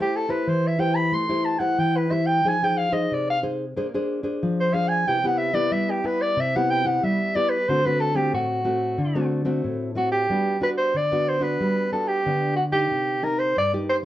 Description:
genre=samba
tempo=92 BPM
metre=4/4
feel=straight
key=G major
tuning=A4 = 439 Hz
part: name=warm soprano saxophone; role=melody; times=0.0-14.0 s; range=F#4 to C6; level=-22 LUFS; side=right 1 dB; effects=none
part: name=nylon-string guitar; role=accompaniment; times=0.0-14.1 s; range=G2 to C5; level=-24 LUFS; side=left 1 dB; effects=none
room=moderate studio reverb, RT60 0.6 s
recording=worn, warbling old tape, cassette tape, warbly pitch drift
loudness=-20 LUFS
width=side -13 dB against mid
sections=0.0-10.3 A section; 10.3-14.1 B section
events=soprano saxophone solo 0.0-10.3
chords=0.0 Am7; 2.5 Fm7; 3.8 Bb9; 5.1 Cmaj7; 7.7 D7; 10.3 Gmaj7; 12.9 Cm7

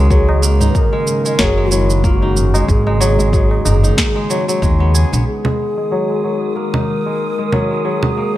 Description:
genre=organic downtempo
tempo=93 BPM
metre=4/4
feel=swing 57% on 16ths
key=G# minor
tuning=A4 = 440 Hz
part: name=mellow hollow bass bansuri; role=melody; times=0.0-8.4 s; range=E4 to B4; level=-21 LUFS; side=equal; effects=analog delay
part: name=airy breathy pad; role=sustained chords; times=0.0-8.4 s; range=C#3 to A#4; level=-22 LUFS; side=equal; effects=chorus, sidechain pumping
part: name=kora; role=arpeggios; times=0.0-8.4 s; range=F#3 to G#4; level=-21 LUFS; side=left 2 dB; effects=low-pass filter, analog delay
part: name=upright bass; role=bass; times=0.0-5.2 s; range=F#1 to D#2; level=-14 LUFS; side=equal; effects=sidechain pumping
part: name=electronic kick drum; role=drums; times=0.1-4.8 s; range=none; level=-16 LUFS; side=equal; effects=small room reverb
part: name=electronic shaker, snare drum and congas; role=drums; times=0.1-8.1 s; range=none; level=-20 LUFS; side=right 2 dB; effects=small room reverb
part: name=tabla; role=percussion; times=0.3-3.9 s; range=none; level=-24 LUFS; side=equal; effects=analog delay
part: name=wind-like tuned noise texture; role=texture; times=5.8-8.4 s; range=D#6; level=-29 LUFS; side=right 6 dB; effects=built-in reverb
room=light reverb, small room reverb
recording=echo-heavy mix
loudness=-13 LUFS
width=side -14 dB against mid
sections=0.0-5.3 A section; 5.3-8.4 B section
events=filter sweep on kora 5.3-8.4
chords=0.0 C#5; 5.3 G#5

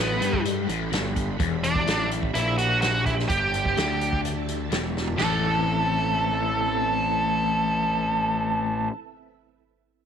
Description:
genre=psychedelic rock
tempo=126 BPM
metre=4/4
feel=straight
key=A dorian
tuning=A4 = 440 Hz
part: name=octave-fuzz lead guitar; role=melody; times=0.0-8.9 s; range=B3 to A4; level=-24 LUFS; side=right 2 dB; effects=distortion, slapback echo
part: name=string machine, full ensemble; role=sustained chords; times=0.0-8.9 s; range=C4 to C6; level=-36 LUFS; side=right 15 dB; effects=ensemble chorus
part: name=crunchy overdriven guitar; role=riff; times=0.0-8.9 s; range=E2 to E4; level=-29 LUFS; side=left 11 dB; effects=rotary speaker
part: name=fuzz fingered electric bass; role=bass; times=0.0-8.9 s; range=E1 to G2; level=-29 LUFS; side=right 2 dB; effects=overdrive
part: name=vintage drum kit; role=drums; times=0.2-5.3 s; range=china cymbal, hi-hat, kick drum, snare drum, toms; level=-29 LUFS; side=right 2 dB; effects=none
room=light reverb, small room ambience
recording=1960s-style stereo with parts hard left and right, faint mains hum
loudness=-22 LUFS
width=side -8 dB against mid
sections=0.0-5.2 A section; 5.2-9.0 B section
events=drum fill 5.0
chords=0.0 Amadd9; 1.4 Em7; 5.2 Amadd9

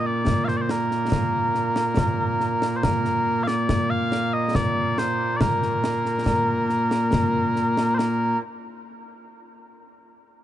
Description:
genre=scottish traditional, Scottish pipe music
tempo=70 BPM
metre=3/4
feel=straight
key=Bb major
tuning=A4 = 439 Hz
part: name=mellow small bagpipes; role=melody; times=0.0-8.4 s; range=Bb2 to F5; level=-22 LUFS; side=equal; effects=none
part: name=concert snare drum and concert bass drum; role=drums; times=0.3-8.4 s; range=none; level=-26 LUFS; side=left 1 dB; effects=none
room=light reverb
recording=dark, warm production, nothing above 10.8 kHz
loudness=-20 LUFS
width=side -12 dB against mid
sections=0.0-8.0 A section; 8.0-10.4 B section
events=none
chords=none

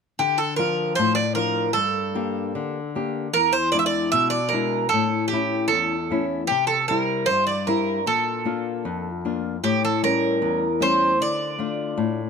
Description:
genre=greek folk, Greek bouzouki band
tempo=76 BPM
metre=2/4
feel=straight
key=D minor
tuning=A4 = 442 Hz
part: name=Greek bouzouki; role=melody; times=0.2-12.3 s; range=G4 to E5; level=-22 LUFS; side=right 2 dB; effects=none
part: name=flamenco guitar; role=accompaniment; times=0.2-12.3 s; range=E2 to G4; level=-24 LUFS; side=left 4 dB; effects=none
room=light reverb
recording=close, detailed microphones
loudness=-20 LUFS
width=side -6 dB against mid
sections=0.2-12.3 A section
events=none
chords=0.2 Dm; 1.8 Gm; 3.3 E7; 4.9 A; 6.5 C; 8.1 Bb; 9.6 A7; 11.2 Dm

